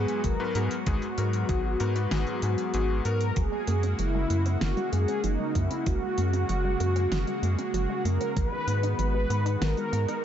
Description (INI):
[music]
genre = synthwave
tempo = 96 BPM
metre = 4/4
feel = straight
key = G# minor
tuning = A4 = 439 Hz
[part]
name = mellow synth brass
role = melody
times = 0.0-10.2 s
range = D#4 to B4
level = -31 LUFS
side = equal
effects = chorus, cassette tape, ping-pong delay
[part]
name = lush unison pad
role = sustained chords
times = 0.0-10.2 s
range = C#3 to F#4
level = -33 LUFS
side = left 1 dB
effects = chorus, sidechain pumping
[part]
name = clear electric grand piano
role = stabs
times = 0.0-3.2 s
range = G#2 to B4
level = -34 LUFS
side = left 4 dB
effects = digital delay
[part]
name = round analog bass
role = bass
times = 0.0-10.1 s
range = F#1 to G#2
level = -27 LUFS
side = equal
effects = none
[part]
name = pop drum kit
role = drums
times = 0.1-10.2 s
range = hi-hat, snare drum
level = -36 LUFS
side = equal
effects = studio reverb
[part]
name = electronic kick drum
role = drums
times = 0.2-8.5 s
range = none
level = -29 LUFS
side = equal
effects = studio reverb
[part]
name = wide unison pluck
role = arpeggios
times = 3.4-10.2 s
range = F#3 to D#4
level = -37 LUFS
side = right 3 dB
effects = digital delay
[sound]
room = light reverb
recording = dark, warm production, nothing above 7.8 kHz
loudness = -25 LUFS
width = side -10 dB against mid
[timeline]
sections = 0.0-10.2 A section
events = none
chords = 0.0 G#m7; 3.4 F#add9; 8.4 G#m7